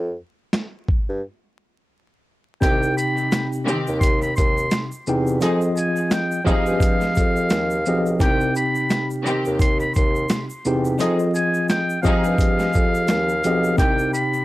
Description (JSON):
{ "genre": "hip hop, boom-bap hip-hop", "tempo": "86 BPM", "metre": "4/4", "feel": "swing 58% on 16ths", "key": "C harmonic minor", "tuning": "A4 = 440 Hz", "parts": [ { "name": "mellow bassoon", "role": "bass", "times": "0.0-14.1 s", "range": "B1 to G2", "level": "-24 LUFS", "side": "equal", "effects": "none" }, { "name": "dusty soul sampler-style drum kit", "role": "drums", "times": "0.5-14.3 s", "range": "hi-hat, kick drum, shaker, snare drum", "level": "-21 LUFS", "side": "equal", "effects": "overdrive" }, { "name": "trumpet with metal mute", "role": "melody", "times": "2.6-14.4 s", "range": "F5 to C6", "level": "-24 LUFS", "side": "equal", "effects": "high-pass filter, low-pass filter" }, { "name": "tine electric piano", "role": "accompaniment", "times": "2.6-14.4 s", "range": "C3 to G5", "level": "-22 LUFS", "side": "equal", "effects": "overdrive, medium stereo tremolo, cassette tape, high-pass filter, low-pass filter" }, { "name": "rich studio string section", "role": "stabs", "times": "2.6-14.0 s", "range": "Eb3 to Ab4", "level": "-27 LUFS", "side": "equal", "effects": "high-pass filter, low-pass filter, analog delay" }, { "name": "egg shaker", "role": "percussion", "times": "2.6-14.4 s", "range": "none", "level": "-44 LUFS", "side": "right 3 dB", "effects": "none" } ], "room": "studio ambience", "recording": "dry, gritty hardware recording, vinyl crackle", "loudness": "-18 LUFS", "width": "side -17 dB against mid", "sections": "0.0-2.6 A section; 2.6-14.4 B section", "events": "break 0.0-2.6", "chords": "0.0 Fsus2; 2.6 Cm; 5.4 Fm7; 8.2 Cm; 11.0 Fm7; 13.8 Cm" }